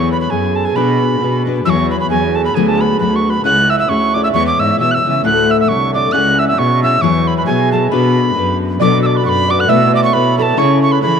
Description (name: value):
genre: celtic folk, Celtic polka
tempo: 134 BPM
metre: 2/4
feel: swing 57% on 8ths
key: B dorian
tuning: A4 = 440 Hz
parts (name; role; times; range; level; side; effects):
- reedy wooden whistle; melody; 0.0-11.2 s; G#5 to F#6; -16 LUFS; right 2 dB; none
- concert harp; second line; 0.0-11.2 s; G#4 to F#5; -19 LUFS; right 12 dB; tape echo
- fingerpicked steel-string acoustic guitar; accompaniment; 0.0-11.2 s; D2 to C#5; -17 LUFS; left 11 dB; none
- warm cello; bass; 0.0-11.2 s; C2 to E3; -18 LUFS; equal; none
room: moderate plate reverb, RT60 3.5 s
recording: 1960s-style stereo with parts hard left and right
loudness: -11 LUFS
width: side -7 dB against mid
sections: 0.0-1.7 A section; 1.7-8.8 A section; 8.8-11.2 B section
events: none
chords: 0.0 Eadd9; 0.8 Bm; 1.7 Eadd9; 2.6 Bm/D; 3.5 C#m; 4.3 E; 5.2 Dsus2; 6.1 C#m; 7.0 Eadd9; 7.9 Bm; 8.8 Bm7; 9.7 Esus4/B; 10.6 C#m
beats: 0.32 | 0.77 1.21 | 1.66 2.11 | 2.56 3.01 | 3.45 3.90 | 4.35 4.79 | 5.24 5.69 | 6.13 6.58 | 7.03 7.47 | 7.92 8.36 | 8.80 9.25 | 9.69 10.13 | 10.58 11.02